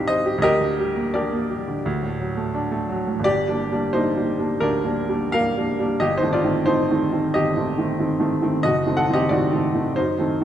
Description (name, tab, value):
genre	classical, romantic character piece for solo piano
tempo	78-94 BPM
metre	4/4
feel	rubato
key	G minor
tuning	A4 = 440 Hz
part	clear baby grand piano	solo	0.0-10.4 s	F#1 to F#5	-19 LUFS	equal	none
room	moderate concert hall reverb, RT60 2.1 s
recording	none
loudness	-19 LUFS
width	side -10 dB against mid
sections	0.0-3.2 A section; 3.2-10.4 B section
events	none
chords	0.4 Gm/D; 1.8 D; 3.2 Gm; 6.0 Am7b5/G; 8.6 F#dim7